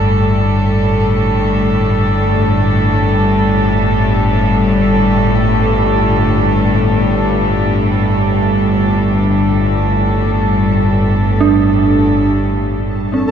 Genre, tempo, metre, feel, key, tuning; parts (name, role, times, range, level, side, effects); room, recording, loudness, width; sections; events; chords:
dark ambient drone; free time; A4 = 441 Hz
rich studio cello section; sustained chords; 0.0-13.3 s; A2 to A4; -14 LUFS; equal
dark detuned synth bell; arpeggios; 0.0-13.3 s; C4 to D4; -15 LUFS; right 5 dB; chorus, tremolo, ping-pong delay
analog drone; drone; 0.0-13.3 s; G1 to G2; -15 LUFS; equal; chorus
flickering grainy texture; texture; 12.9-13.3 s; A4; -24 LUFS; left 2 dB; built-in reverb
moderate huge ambient reverb, RT60 7.6 s; -11 LUFS; side -8 dB against mid
0.0-12.8 A section
filter sweep on synth drone 0.0-12.8
0.0 Gsus2